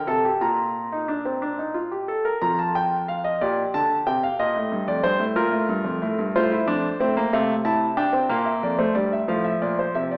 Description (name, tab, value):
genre	classical, baroque-style 3-part fugue for grand piano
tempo	61 BPM (dotted quarters)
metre	6/8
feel	straight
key	Bb major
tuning	A4 = 439 Hz
part	clear concert grand piano	solo	0.1-10.2 s	F2 to Bb5	-20 LUFS	equal	none
room	wet recital hall reverb, RT60 1.6 s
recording	recorded in a church or concert hall, AM radio sound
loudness	-20 LUFS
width	side -33 dB against mid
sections	0.0-2.4 A section; 2.4-10.2 B section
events	none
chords	0.4 Bb; 2.4 Bb5/F; 3.4 Bb; 4.4 Eb; 5.4 Bb5; 6.3 F; 7.3 F/C; 8.3 Bb; 9.3 F/A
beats	| 0.42 1.43 | 2.43 3.41 | 4.39 5.36 | 6.33 7.31 | 8.29 9.28